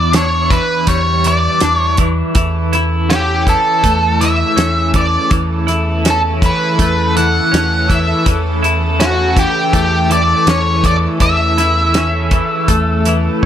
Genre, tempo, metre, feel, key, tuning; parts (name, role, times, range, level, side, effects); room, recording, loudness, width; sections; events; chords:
psychedelic rock; 81 BPM; 4/4; straight; A4 = 439 Hz
octave-fuzz lead guitar; melody; 0.0-13.4 s; F#4 to F#5; -16 LUFS; equal; distortion, slapback echo
twelve-string electric guitar; riff; 0.0-13.5 s; E2 to E4; -17 LUFS; equal; tremolo, double-tracked left and right
fingered electric bass; bass; 0.0-13.5 s; E2; -17 LUFS; equal
damped 70s drum kit; drums; 0.1-13.5 s; hi-hat, kick drum, snare drum; -15 LUFS; equal
clear symphonic string section; sustained chords; 2.4-13.5 s; C#3 to A4; -26 LUFS; right 6 dB
light reverb, small room ambience; -11 LUFS; side -10 dB against mid
0.0-13.5 A section
0.0 Em7; 2.4 A/E